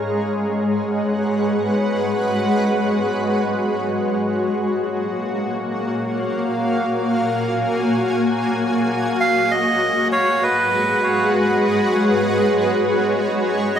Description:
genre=ambient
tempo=free time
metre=none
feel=none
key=G# dorian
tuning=A4 = 439 Hz
part: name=granular cloud pad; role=sustained chords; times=0.0-13.8 s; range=G#3 to A#5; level=-18 LUFS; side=equal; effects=built-in reverb
part: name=melodica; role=melody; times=9.2-13.8 s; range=B4 to E#5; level=-20 LUFS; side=right 2 dB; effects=dub echo
room=wet echo chamber reverb, RT60 2.5 s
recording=none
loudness=-17 LUFS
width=side -8 dB against mid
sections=0.0-13.8 A section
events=none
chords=0.0 G#m11; 4.4 A#m7; 9.2 G#m7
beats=free time

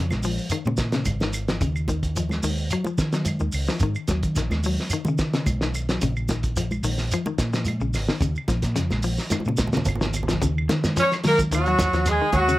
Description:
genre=afrobeat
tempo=109 BPM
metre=4/4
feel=swing 53% on 16ths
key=unclear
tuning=A4 = 436 Hz
part: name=semi-hollow electric guitar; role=arpeggios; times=0.0-12.6 s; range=Db3 to Gb3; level=-29 LUFS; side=left 4 dB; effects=none
part: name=hollow-body short-scale fingered electric bass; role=bass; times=0.0-12.6 s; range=Ab1 to Eb3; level=-26 LUFS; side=equal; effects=none
part: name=cloth-damped thuddy drum kit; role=drums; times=0.1-12.5 s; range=hi-hat, kick drum, snare drum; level=-27 LUFS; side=right 1 dB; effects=none
part: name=claves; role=percussion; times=0.1-12.5 s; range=none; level=-35 LUFS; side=right 4 dB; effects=none
part: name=congas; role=percussion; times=0.1-12.5 s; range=none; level=-31 LUFS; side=right 1 dB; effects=none
part: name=shekere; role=percussion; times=0.1-12.6 s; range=none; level=-32 LUFS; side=right 1 dB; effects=none
part: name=clear horn section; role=melody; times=11.0-12.6 s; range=Gb4 to Db5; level=-22 LUFS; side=left 1 dB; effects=none
part: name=edgy tenor saxophone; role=second line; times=11.0-12.6 s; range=Gb3 to Db4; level=-24 LUFS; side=right 3 dB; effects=none
room=moderate small room reverb, RT60 0.5 s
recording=none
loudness=-21 LUFS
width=side -17 dB against mid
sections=0.0-10.4 A section; 10.4-12.6 B section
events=drum fill 9.3-10.4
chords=0.0 Bbm7; 1.6 Ebm7; 6.0 Bbm7; 10.4 Bbm (rootless)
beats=0.52 1.07 | 1.62 2.17 2.72 3.27 | 3.82 4.37 4.92 5.47 | 6.02 6.57 7.12 7.67 | 8.22 8.77 9.31 9.86 | 10.41 10.96 11.51 12.06

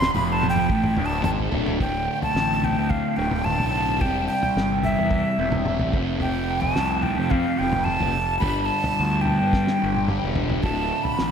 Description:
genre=psychedelic rock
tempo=109 BPM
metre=4/4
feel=straight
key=D dorian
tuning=A4 = 439 Hz
part: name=breathy bright jazz flute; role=melody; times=0.0-11.3 s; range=E5 to C6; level=-25 LUFS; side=equal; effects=ping-pong delay
part: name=fuzz guitar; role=riff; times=0.0-11.3 s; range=D2 to C4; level=-25 LUFS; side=equal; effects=distortion, phaser
part: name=fuzz fingered electric bass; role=bass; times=0.0-11.3 s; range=D1 to G2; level=-28 LUFS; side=equal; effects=overdrive
part: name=cloth-damped thuddy drum kit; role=drums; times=0.0-11.3 s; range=kick drum, snare drum, toms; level=-28 LUFS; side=equal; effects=none
room=wet lush hall reverb, RT60 1.8 s, small room ambience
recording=dreamy mix soaked in reverb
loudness=-20 LUFS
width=side -7 dB against mid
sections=0.0-1.8 A section; 1.8-11.3 B section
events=drum fill 0.0-1.8, 9.5-10.6; flute solo 0.0-1.8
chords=0.0 Dm; 1.8 D5; 4.0 C/E; 5.9 F; 8.4 G5; 10.6 D5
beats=0.15 0.70 1.25 | 1.80 2.35 2.90 3.46 | 4.01 4.56 5.11 5.67 | 6.22 6.77 7.32 7.88 | 8.43 8.98 9.53 10.09 | 10.64 11.19

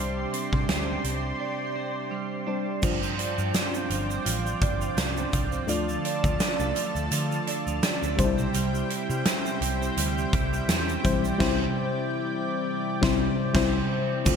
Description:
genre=1980s-style pop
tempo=84 BPM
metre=4/4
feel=swing 55% on 16ths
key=unclear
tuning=A4 = 440 Hz
part: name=mellow FM electric piano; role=accompaniment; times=0.0-14.4 s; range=G2 to E5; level=-29 LUFS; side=left 4 dB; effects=chorus
part: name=lush unison pad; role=sustained chords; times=0.0-14.4 s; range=E4 to C6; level=-32 LUFS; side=equal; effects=chorus
part: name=twelve-string electric guitar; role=riff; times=0.0-14.4 s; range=F3 to E4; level=-32 LUFS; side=right 7 dB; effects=ensemble chorus, ping-pong delay
part: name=vintage muted picked electric bass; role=bass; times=0.0-14.4 s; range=G1 to D3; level=-31 LUFS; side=equal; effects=none
part: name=huge arena drum kit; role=drums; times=0.3-14.4 s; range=crash cymbal, hi-hat, kick drum, snare drum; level=-28 LUFS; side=right 1 dB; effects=none
part: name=tube shaker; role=percussion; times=2.8-14.4 s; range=none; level=-41 LUFS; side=right 11 dB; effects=none
room=moderate plate reverb, RT60 3.0 s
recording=bright 1980s-style digital production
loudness=-24 LUFS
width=side -6 dB against mid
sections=0.0-2.8 A section; 2.8-14.3 B section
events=break 1.4-2.8; band accent 11.4-14.3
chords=0.0 Csus2; 2.8 G7sus4; 5.7 Dm; 8.2 C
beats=0.69 1.40 2.12 | 2.83 3.55 4.26 4.97 | 5.69 6.40 7.12 7.83 | 8.55 9.26 9.97 10.69 | 11.40 12.12 12.83 13.55 | 14.26

